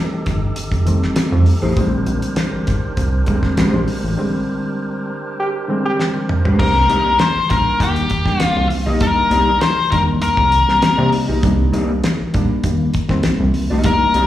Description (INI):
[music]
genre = funk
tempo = 99 BPM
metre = 4/4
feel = straight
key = C minor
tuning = A4 = 444 Hz
[part]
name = percussive tonewheel organ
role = sustained chords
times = 0.0-6.6 s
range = D4 to C5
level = -28 LUFS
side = equal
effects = slow rotary speaker, overdrive
[part]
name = barky reed electric piano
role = stabs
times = 0.0-14.3 s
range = D3 to D4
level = -21 LUFS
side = equal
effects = overdrive, slapback echo
[part]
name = rubbery square bass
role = bass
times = 0.3-14.3 s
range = F1 to C3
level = -18 LUFS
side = equal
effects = none
[part]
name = damped 70s drum kit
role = drums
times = 0.3-14.3 s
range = crash cymbal, hi-hat, kick drum, snare drum, toms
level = -21 LUFS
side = equal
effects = slapback echo
[part]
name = mellow electric guitar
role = accompaniment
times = 1.6-14.3 s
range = Ab3 to Eb5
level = -21 LUFS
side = left 2 dB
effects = ensemble chorus, slapback echo
[part]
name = warm trombone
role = second line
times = 5.4-6.0 s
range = G4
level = -21 LUFS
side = right 2 dB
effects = slapback echo
[part]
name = octave-fuzz lead guitar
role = melody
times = 6.6-14.3 s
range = G4 to C5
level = -16 LUFS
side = left 3 dB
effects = distortion, slapback echo
[sound]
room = light reverb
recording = live gig heard through the venue's PA, recital hall reverb, studio ambience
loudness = -14 LUFS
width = side -13 dB against mid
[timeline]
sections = 0.0-6.6 A section; 6.6-14.3 B section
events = band accent 4.2-6.6; drum fill 6.0-6.6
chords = 0.0 F9; 1.8 Bb13; 6.6 Cm9